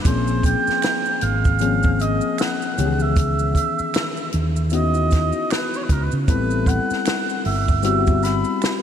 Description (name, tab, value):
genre	R&B, neo-soul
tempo	77 BPM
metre	4/4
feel	swing 59% on 16ths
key	unclear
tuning	A4 = 444 Hz
part	warm oboe	melody	0.0-8.8 s	A#4 to B5	-24 LUFS	right 4 dB	none
part	reed electric piano	accompaniment	0.0-8.8 s	D#3 to A4	-24 LUFS	left 7 dB	analog chorus
part	maracas and finger snaps	percussion	0.0-8.8 s	none	-38 LUFS	right 13 dB	none
part	mellow fretless electric bass	bass	0.1-8.4 s	G1 to C#3	-21 LUFS	right 1 dB	none
part	compact cocktail drum kit	drums	0.1-8.8 s	hi-hat, kick drum, snare drum	-22 LUFS	right 1 dB	none
room	moderate lush hall reverb, RT60 3.3 s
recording	dreamy mix soaked in reverb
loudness	-18 LUFS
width	side -9 dB against mid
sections	0.0-8.8 A section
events	none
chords	0.0 A#m9; 2.8 C#m9; 6.3 Am9